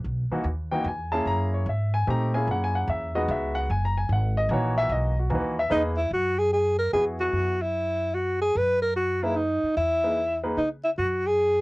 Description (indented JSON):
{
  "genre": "modal jazz",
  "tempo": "148 BPM",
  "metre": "3/4",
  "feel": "swing 65% on 8ths",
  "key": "F# mixolydian",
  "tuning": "A4 = 440 Hz",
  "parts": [
    { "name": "upright bass", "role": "bass", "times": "0.0-11.6 s", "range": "F#1 to C#3", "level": "-28 LUFS", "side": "equal", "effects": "none" },
    { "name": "warm grand piano", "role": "accompaniment", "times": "0.3-10.6 s", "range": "E3 to A#5", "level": "-26 LUFS", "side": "equal", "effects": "cassette tape" },
    { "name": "breathy alto saxophone", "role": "melody", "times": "5.7-11.6 s", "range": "D#4 to B4", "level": "-23 LUFS", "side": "equal", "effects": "none" }
  ],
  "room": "wet booth ambience, RT60 0.2 s",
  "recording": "home recording on cassette",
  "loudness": "-23 LUFS",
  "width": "side -21 dB against mid",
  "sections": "0.0-6.1 A section; 6.1-11.6 B section",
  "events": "none",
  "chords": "0.0 E; 1.3 F#9; 3.7 E/F#; 6.1 F#sus2; 8.5 E/F#; 11.0 F#sus2",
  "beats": "| 0.04 0.45 0.85 | 1.26 1.66 2.07 | 2.47 2.88 3.28 | 3.69 4.09 4.50 | 4.90 5.30 5.71 | 6.11 6.52 6.92 | 7.33 7.74 8.14 | 8.55 8.95 9.36 | 9.76 10.17 10.57 | 10.97 11.38"
}